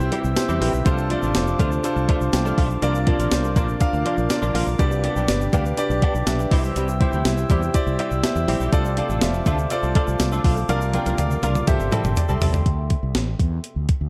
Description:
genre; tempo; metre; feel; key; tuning
1980s-style pop; 122 BPM; 4/4; straight; C major; A4 = 439 Hz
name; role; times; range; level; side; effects
clear grand piano; accompaniment; 0.0-14.1 s; C3 to G5; -27 LUFS; equal; none
glass harmonica; sustained chords; 0.0-12.7 s; A4 to E6; -34 LUFS; equal; none
direct-recorded clean electric guitar; riff; 0.0-12.6 s; F3 to Bb4; -32 LUFS; equal; ensemble chorus, tape echo
fretless electric bass; bass; 0.0-14.1 s; F1 to E2; -26 LUFS; equal; none
egg shaker; percussion; 0.0-12.7 s; none; -46 LUFS; equal; none
clean 12-bit digital drum machine; drums; 0.1-14.0 s; hi-hat, kick drum, snare drum, tambourine, toms; -24 LUFS; equal; overdrive
room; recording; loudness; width
moderate lush hall reverb, RT60 2.1 s; dark, warm production; -21 LUFS; mono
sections
0.0-12.7 A section; 12.7-14.1 B section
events
drum fill 10.7-12.7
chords
0.0 C; 0.9 F6; 2.8 Bb; 4.8 G; 6.5 C; 8.7 F6; 10.7 Bb/C; 11.7 C6; 12.7 Dsus2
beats
0.37 | 0.86 1.35 1.84 2.33 | 2.83 3.32 3.81 4.30 | 4.79 5.29 5.78 6.27 | 6.76 7.25 7.74 8.23 | 8.73 9.22 9.71 10.20 | 10.69 11.19 11.68 12.17 | 12.66 13.15 13.64

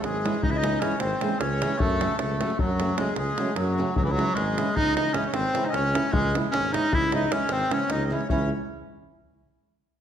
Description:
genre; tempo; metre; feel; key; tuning
balkan folk, Balkan wedding band; 304 BPM (eighths); 11/8; straight; C# harmonic minor; A4 = 440 Hz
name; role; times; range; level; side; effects
bright clarinet; melody; 0.0-8.5 s; E3 to E4; -27 LUFS; equal; none
accordion; second line; 0.0-8.5 s; E4 to E5; -31 LUFS; left 2 dB; none
mellow tuba; bass; 0.0-8.5 s; G#1 to F#2; -30 LUFS; equal; none
davul; percussion; 0.0-8.5 s; none; -30 LUFS; equal; none
flamenco guitar; accompaniment; 0.2-8.5 s; C#3 to G#4; -31 LUFS; right 2 dB; none
room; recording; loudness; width
wet recital hall reverb, RT60 1.4 s; none; -22 LUFS; side -9 dB against mid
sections
0.0-8.3 A section; 8.3-10.0 B section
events
none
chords
0.0 C#m; 1.8 F#m; 4.0 C#m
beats
0.02 0.22 0.42 0.62 0.81 1.01 1.21 1.40 1.60 | 1.80 2.00 2.19 2.39 2.58 2.78 2.98 3.18 3.37 3.57 3.77 | 3.96 4.16 4.36 4.55 4.75 4.95 5.14 5.34 5.54 5.74 5.93 | 6.13 6.33 6.53 6.72 6.92 7.12 7.32 7.51 7.71 7.91 8.11 | 8.30 8.50

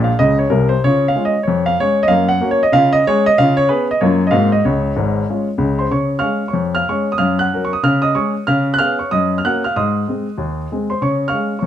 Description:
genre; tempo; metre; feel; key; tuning
jazz, stride piano; 188 BPM; 4/4; swing 62% on 8ths; Db major; A4 = 439 Hz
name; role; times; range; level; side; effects
warm baby grand piano; solo; 0.0-11.7 s; Ab1 to Gb6; -14 LUFS; equal; none
room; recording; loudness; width
moderate studio reverb, RT60 0.7 s; dark, warm production; -14 LUFS; side -10 dB against mid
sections
0.0-5.9 A section; 5.9-11.7 A section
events
grand piano fill 0.0-0.8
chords
0.0 Ab (rootless); 0.8 Db; 1.5 Db/F; 2.1 Gb; 2.7 Db; 3.4 Db7; 4.0 Gbmaj7; 4.3 Ab9; 4.7 Db; 6.6 Db/F; 7.2 Gb; 7.8 Db; 8.5 Db7; 9.1 Gb; 9.7 Ab; 11.0 Db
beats
0.20 0.52 | 0.83 1.15 1.47 1.79 | 2.11 2.43 2.74 3.06 | 3.38 3.70 4.01 4.33 | 4.65 4.97 5.29 5.61 | 5.92 6.24 6.56 6.88 | 7.20 7.51 7.83 8.15 | 8.47 8.79 9.11 9.43 | 9.75 10.06 10.38 10.70 | 11.02 11.34 11.66

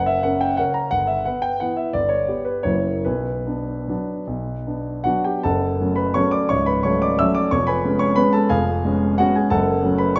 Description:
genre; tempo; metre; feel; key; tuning
classical, piano waltz; 141-192 BPM; 3/4; rubato; B minor, F# minor from 5.5 s; A4 = 441 Hz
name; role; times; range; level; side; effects
warm grand piano; solo; 0.0-10.2 s; C#1 to E6; -20 LUFS; equal; none
room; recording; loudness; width
wet recital hall reverb, RT60 1.5 s; dark, warm production, nothing above 7.5 kHz; -21 LUFS; mono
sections
0.0-5.5 A section; 5.5-10.2 B section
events
none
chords
0.0 F#; 0.9 Em/G; 1.9 G; 2.7 F#7; 3.0 Bm; 5.5 F#m; 7.5 C#7/E#; 9.5 F#m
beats
0.24 0.58 | 0.92 1.26 1.61 | 1.94 2.28 2.65 | 3.05 3.46 3.88 | 4.28 4.67 5.06 | 5.45 5.80 6.16 | 6.50 6.84 7.20 | 7.53 7.85 8.18 | 8.51 8.84 9.19 | 9.52 9.83 10.16

